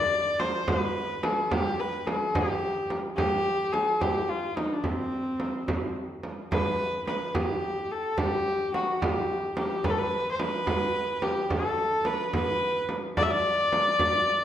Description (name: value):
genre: Persian modal ensemble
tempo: 72 BPM (dotted quarters)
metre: 6/8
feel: straight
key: C avaz esfahan, G dastgah mahur from 6.5 s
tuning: A4 = 440 Hz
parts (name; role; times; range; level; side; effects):
- rich kamancheh; melody; 0.0-14.4 s; C4 to E5; -26 LUFS; left 1 dB; slapback echo
- frame drum; percussion; 0.4-14.1 s; none; -30 LUFS; right 2 dB; none
room: wet recital hall reverb, RT60 1.5 s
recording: none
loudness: -25 LUFS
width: side -10 dB against mid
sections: 0.0-6.5 A section; 6.5-14.4 B section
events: none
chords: none